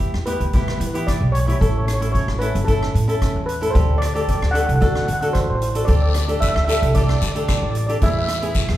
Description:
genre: calypso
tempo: 112 BPM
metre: 4/4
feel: straight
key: unclear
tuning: A4 = 440 Hz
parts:
  - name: flamenco guitar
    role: accompaniment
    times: 0.0-8.7 s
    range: B3 to A4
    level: -24 LUFS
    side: equal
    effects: none
  - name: street-band drum kit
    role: drums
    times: 0.0-8.8 s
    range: hi-hat, kick drum, rim click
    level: -23 LUFS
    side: equal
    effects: none
  - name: upright bass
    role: bass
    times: 0.1-8.8 s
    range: G1 to E3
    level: -21 LUFS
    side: equal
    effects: none
  - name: steel pan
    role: melody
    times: 0.3-8.5 s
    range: A4 to F#5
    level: -25 LUFS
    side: equal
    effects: none
  - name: guiro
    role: percussion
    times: 5.9-8.7 s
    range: none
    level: -30 LUFS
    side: left 5 dB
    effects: none
room: moderate recital hall reverb, RT60 1.6 s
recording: recorded in a church or concert hall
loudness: -17 LUFS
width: side -14 dB against mid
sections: 0.0-8.8 A section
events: none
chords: 0.0 Em7; 1.6 A7; 3.7 D7sus4; 4.8 D; 5.9 D7sus4; 8.0 E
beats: 0.00 0.54 1.07 | 1.61 2.14 2.68 3.21 | 3.75 4.28 4.81 5.35 | 5.88 6.42 6.95 7.48 | 8.02 8.55

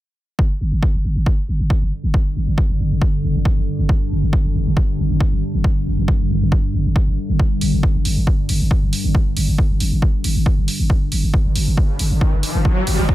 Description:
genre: driving peak-time techno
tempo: 137 BPM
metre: 4/4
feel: straight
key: unclear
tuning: A4 = 439 Hz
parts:
  - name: deep dark ambient pad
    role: drone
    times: 1.6-13.1 s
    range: G2 to D3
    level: -25 LUFS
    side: equal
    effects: chorus, built-in reverb, sidechain pumping
  - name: electronic kick drum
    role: drums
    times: 0.4-13.1 s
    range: none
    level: -16 LUFS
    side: equal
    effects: overdrive, small room ambience
  - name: growling 808-style bass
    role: bass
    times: 0.6-13.1 s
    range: G1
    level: -19 LUFS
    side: equal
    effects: overdrive, sidechain pumping, low-pass filter
  - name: electronic hi-hat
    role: drums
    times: 7.6-13.0 s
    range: none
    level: -26 LUFS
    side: right 2 dB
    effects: overdrive, sidechain pumping on hats, low-pass filter on hats, small room ambience
  - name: riser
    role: sound effects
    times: 11.6-13.1 s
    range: none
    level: -24 LUFS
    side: equal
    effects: none
room: little or no reverb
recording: none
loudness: -16 LUFS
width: side -15 dB against mid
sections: 0.4-13.1 A section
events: riser 11.6-13.1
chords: 0.4 G5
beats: | 0.39 0.83 1.26 1.70 | 2.14 2.58 3.02 3.45 | 3.89 4.33 4.77 5.21 | 5.64 6.08 6.52 6.96 | 7.39 7.83 8.27 8.71 | 9.15 9.59 10.02 10.46 | 10.90 11.34 11.78 12.21 | 12.65 13.09

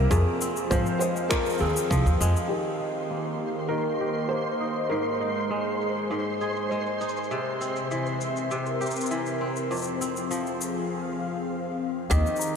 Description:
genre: folktronica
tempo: 100 BPM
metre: 4/4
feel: straight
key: unclear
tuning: A4 = 440 Hz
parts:
  - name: felt-muted upright piano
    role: melody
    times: 0.0-7.0, 12.1-12.6 s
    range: G4 to Eb5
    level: -30 LUFS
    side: equal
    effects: tape echo
  - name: warm analog pad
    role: sustained chords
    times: 0.0-12.6 s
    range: C3 to F5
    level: -31 LUFS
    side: left 1 dB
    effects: chorus
  - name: kora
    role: arpeggios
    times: 0.0-12.6 s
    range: F2 to Ab4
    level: -31 LUFS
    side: right 1 dB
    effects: vintage 12-bit sampler grit, low-pass filter, tape echo
  - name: upright bass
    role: bass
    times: 0.0-2.3, 12.1-12.2 s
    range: C2 to Ab2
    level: -23 LUFS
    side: equal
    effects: none
  - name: electronic kick drum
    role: drums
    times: 0.1-2.0, 12.1-12.2 s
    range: none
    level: -29 LUFS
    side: equal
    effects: overdrive
  - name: organic electronic drum kit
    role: drums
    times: 0.1-12.5 s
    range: cabasa, finger snaps, hi-hat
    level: -35 LUFS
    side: left 3 dB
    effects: overdrive, low-pass filter on perc, low-pass filter on snare, low-pass filter on hats, low-pass filter on room
  - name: flickering grainy texture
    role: texture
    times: 2.8-10.9 s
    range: C5 to C6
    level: -36 LUFS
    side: equal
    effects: built-in reverb, ensemble chorus
  - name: music box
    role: second line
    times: 12.1-12.5 s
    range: Eb5 to Bb5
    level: -35 LUFS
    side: right 1 dB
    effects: none
room: wet huge ambient reverb, RT60 7.6 s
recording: dreamy mix soaked in reverb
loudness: -25 LUFS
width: side -6 dB against mid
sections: 0.0-2.5 A section; 2.5-12.1 B section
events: filter sweep on kora 2.5-12.1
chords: 0.1 Fm; 2.5 Eb; 4.9 Ab; 7.3 C7; 9.7 Fm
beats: | 0.11 0.71 1.31 1.91 | 2.51 3.11 3.71 4.31 | 4.91 5.51 6.11 6.71 | 7.31 7.91 8.51 9.11 | 9.71 10.31 10.91 11.51 | 12.11

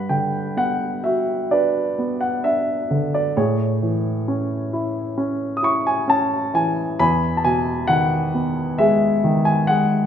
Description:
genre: classical, lyrical solo piano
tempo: 66 BPM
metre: 4/4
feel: rubato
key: unclear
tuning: A4 = 440 Hz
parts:
  - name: warm grand piano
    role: solo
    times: 0.0-10.1 s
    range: E2 to D#6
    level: -18 LUFS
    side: equal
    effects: none
room: moderate scoring stage reverb, RT60 1.7 s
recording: minimal, uncompressed stereo recording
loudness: -18 LUFS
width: side -8 dB against mid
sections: 0.0-10.1 A section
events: none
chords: 0.0 Gmaj7; 3.4 Amaj7; 7.0 Emaj7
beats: 0.58 1.52 2.45 | 3.37 4.28 5.19 6.09 | 7.00 7.90 8.79 9.70

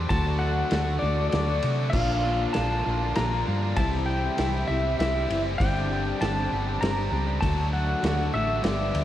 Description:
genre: folk rock and heartland rock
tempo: 98 BPM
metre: 3/4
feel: straight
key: unclear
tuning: A4 = 440 Hz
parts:
  - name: pedal steel guitar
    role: melody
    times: 0.0-9.0 s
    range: D5 to Bb5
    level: -29 LUFS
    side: left 1 dB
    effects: diffuse ambient delay
  - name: picked steel-string acoustic guitar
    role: accompaniment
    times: 0.0-9.0 s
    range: G2 to G4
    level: -32 LUFS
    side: left 3 dB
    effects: wide subtle chorus
  - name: accordion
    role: sustained chords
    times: 0.0-9.0 s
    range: C4 to E5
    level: -38 LUFS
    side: right 1 dB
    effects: none
  - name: crunchy overdriven guitar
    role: riff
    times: 0.0-9.0 s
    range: G2 to G4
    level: -32 LUFS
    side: right 1 dB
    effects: none
  - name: hollow-body short-scale fingered electric bass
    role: bass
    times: 0.0-9.0 s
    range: F#1 to C3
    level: -28 LUFS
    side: equal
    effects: none
  - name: vintage drum kit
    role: drums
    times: 0.1-9.0 s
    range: crash cymbal, kick drum, ride cymbal, snare drum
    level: -31 LUFS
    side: equal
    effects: vintage 12-bit sampler grit
room: moderate plate reverb, RT60 2.2 s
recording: dreamy mix soaked in reverb, vinyl crackle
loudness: -23 LUFS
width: side -12 dB against mid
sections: 0.0-9.0 A section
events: none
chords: 0.1 D; 1.9 Bb; 3.8 C; 5.6 Gsus4; 7.4 D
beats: | 0.11 0.72 1.33 | 1.94 2.55 3.16 | 3.77 4.38 4.99 | 5.60 6.21 6.82 | 7.42 8.03 8.64

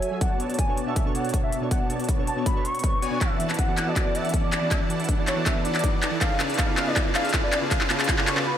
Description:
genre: future bass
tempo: 160 BPM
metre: 4/4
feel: half-time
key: unclear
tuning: A4 = 440 Hz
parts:
  - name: warm velvety synth lead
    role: melody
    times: 0.0-8.6 s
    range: B4 to C#6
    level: -30 LUFS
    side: left 1 dB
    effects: chorus, cassette tape, sidechain pumping, tape echo
  - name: big bright polysynth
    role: riff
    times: 0.0-8.5 s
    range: E3 to A5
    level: -30 LUFS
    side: left 2 dB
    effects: chorus, sidechain pumping
  - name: warm 808-style bass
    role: bass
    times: 0.0-8.5 s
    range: none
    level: barely audible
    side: none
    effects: none
  - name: big-room dance drum kit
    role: drums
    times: 0.0-8.4 s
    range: handclaps, hi-hat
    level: -27 LUFS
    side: left 1 dB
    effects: none
  - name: riser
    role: sound effects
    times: 0.0-8.6 s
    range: none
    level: -35 LUFS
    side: right 1 dB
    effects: none
  - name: glassy digital keys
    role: accompaniment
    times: 0.1-8.5 s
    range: B2 to E5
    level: -31 LUFS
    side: right 4 dB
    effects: chorus, sidechain pumping
  - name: electronic kick drum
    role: drums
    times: 0.2-8.2 s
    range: none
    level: -25 LUFS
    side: equal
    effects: none
room: moderate lush hall reverb, RT60 2.0 s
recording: none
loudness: -22 LUFS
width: side -10 dB against mid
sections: 0.0-8.6 A section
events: build-up 0.0-8.6; riser 0.0-8.6; filter sweep on analog polysynth 0.0-8.6; drum fill 3.2-8.5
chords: 0.2 Bm9; 3.2 E9sus4; 6.2 C#7b9b13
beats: | 0.21 0.59 0.96 1.34 | 1.71 2.09 2.46 2.84 | 3.21 3.59 3.96 4.34 | 4.71 5.09 5.46 5.84 | 6.21 6.59 6.96 7.34 | 7.71 8.09 8.46

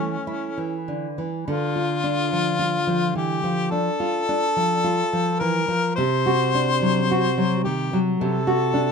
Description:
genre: romantic duo for harmonica and classical guitar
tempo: 49-57 BPM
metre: 4/4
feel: rubato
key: D minor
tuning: A4 = 440 Hz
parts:
  - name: warm harmonica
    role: melody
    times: 0.0-8.9 s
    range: C#4 to C5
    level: -24 LUFS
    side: left 4 dB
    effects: none
  - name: nylon-string guitar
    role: accompaniment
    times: 0.0-8.9 s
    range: C3 to F#4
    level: -22 LUFS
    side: right 1 dB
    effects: none
room: moderate studio reverb, RT60 0.6 s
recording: minimal, uncompressed stereo recording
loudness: -20 LUFS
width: side -5 dB against mid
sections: 0.0-8.9 A section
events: none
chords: 0.0 A; 1.5 Dm; 6.0 D7/C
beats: 0.28 | 1.48 2.61 3.72 4.84 | 5.98 7.11 8.20

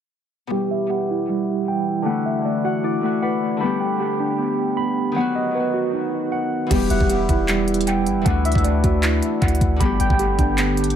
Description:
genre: hip hop, trap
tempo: 155 BPM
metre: 4/4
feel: half-time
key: E minor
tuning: A4 = 440 Hz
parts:
  - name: Celtic harp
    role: accompaniment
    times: 0.5-11.0 s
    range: B2 to F#5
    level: -24 LUFS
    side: left 6 dB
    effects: low-pass filter, dub echo
  - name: warm analog pad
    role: sustained chords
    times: 0.5-11.0 s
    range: D3 to G4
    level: -30 LUFS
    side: equal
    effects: chorus, low-pass filter
  - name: mellow tine electric piano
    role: arpeggios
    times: 0.5-11.0 s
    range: G3 to B5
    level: -22 LUFS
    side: right 5 dB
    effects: medium stereo tremolo, low-pass filter, dub echo
  - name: clean 808-style bass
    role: bass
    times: 6.7-11.0 s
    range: E1 to D2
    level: -22 LUFS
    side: equal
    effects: none
  - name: trap drum kit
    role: drums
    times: 6.7-11.0 s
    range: crash cymbal, handclaps, hi-hat, kick drum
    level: -22 LUFS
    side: equal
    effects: overdrive, dub echo
  - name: soft octave-layered synth lead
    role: second line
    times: 6.9-10.2 s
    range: E5 to G5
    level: -30 LUFS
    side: left 2 dB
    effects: chorus, dub echo
room: light reverb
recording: echo-heavy mix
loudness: -18 LUFS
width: side -9 dB against mid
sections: 0.5-6.7 A section; 6.7-11.0 B section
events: filter sweep 0.5-6.7; harp fill 2.5-3.6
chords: 0.5 Emadd9; 2.1 Dadd9; 3.6 G; 5.2 B; 6.7 Emadd9; 8.3 Dadd9; 9.8 G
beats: | 0.52 0.90 1.29 1.68 | 2.06 2.45 2.84 3.23 | 3.61 4.00 4.39 4.77 | 5.16 5.55 5.94 6.32 | 6.71 7.10 7.48 7.87 | 8.26 8.64 9.03 9.42 | 9.81 10.19 10.58

